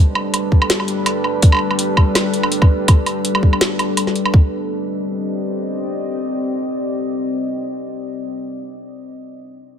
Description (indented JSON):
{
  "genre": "half-time drum and bass",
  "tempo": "165 BPM",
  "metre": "4/4",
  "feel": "swing 55% on 16ths, half-time",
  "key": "C dorian",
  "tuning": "A4 = 439 Hz",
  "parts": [
    { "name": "deep dark ambient pad", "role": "sustained chords", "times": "0.0-8.0 s", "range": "G3 to Eb5", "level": "-21 LUFS", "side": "left 1 dB", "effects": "chorus, built-in reverb, sidechain pumping" },
    { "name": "drum and bass drum kit", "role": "drums", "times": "0.2-4.3 s", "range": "hi-hat, snare drum, woodblock", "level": "-18 LUFS", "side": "right 1 dB", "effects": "none" },
    { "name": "electronic kick drum", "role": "drums", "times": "0.5-4.4 s", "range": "none", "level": "-11 LUFS", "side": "equal", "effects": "none" }
  ],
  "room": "light reverb, digital ambience",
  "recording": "none",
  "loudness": "-15 LUFS",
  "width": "side -8 dB against mid",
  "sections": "0.0-4.3 A section; 4.3-7.2 B section",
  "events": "none",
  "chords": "0.0 Gadd9; 4.3 Cm",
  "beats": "0.34 0.70 1.06 | 1.43 1.79 2.15 2.52 | 2.88 3.24 3.61 3.97 | 4.33 4.70 5.06 5.43 | 5.79 6.15 6.52 6.88"
}